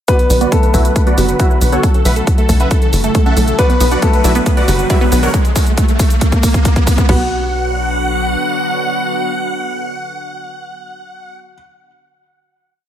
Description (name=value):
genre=uplifting trance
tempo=137 BPM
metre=4/4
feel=straight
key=B minor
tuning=A4 = 440 Hz
part: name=supersaw chords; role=melody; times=0.1-11.4 s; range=E4 to B5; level=-20 LUFS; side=equal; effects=sidechain pumping, low-pass filter, tape echo
part: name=warm grand piano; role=second line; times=0.1-11.5 s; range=F#3 to B4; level=-21 LUFS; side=left 1 dB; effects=tape echo
part: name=analog string pad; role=sustained chords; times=0.1-11.4 s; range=C#3 to F#4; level=-22 LUFS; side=left 1 dB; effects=ensemble chorus, sidechain pumping
part: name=analog pluck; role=arpeggios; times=0.1-7.3 s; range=A3 to D5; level=-22 LUFS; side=right 3 dB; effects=chorus, phaser, sidechain pumping, tape echo
part: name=electronic kick drum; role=drums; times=0.1-7.2 s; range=none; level=-12 LUFS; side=equal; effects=none
part: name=techno drum kit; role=drums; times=0.1-7.2 s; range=crash cymbal, hi-hat, shaker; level=-24 LUFS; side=equal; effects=high-pass filter on hats, high-pass filter on perc, high-pass filter on cymbals, high-pass filter on room
part: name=riser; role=sound effects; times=2.3-7.1 s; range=none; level=-23 LUFS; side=right 1 dB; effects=none
part: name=tight sequencer bass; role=bass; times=0.3-8.4 s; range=F#1 to B1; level=-16 LUFS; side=equal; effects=sidechain pumping
room=light reverb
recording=none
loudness=-11 LUFS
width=side -10 dB against mid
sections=0.1-7.1 build; 7.1-10.6 final chord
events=build-up 0.1-7.1; filter sweep on supersaw synth 0.1-5.3; filter sweep on synth arpeggio sound 0.1-5.3; riser 2.3-7.1; drum fill 3.6-7.1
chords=0.1 Bm; 1.8 A6/B; 3.6 Bm; 5.3 N.C.; 7.1 Bm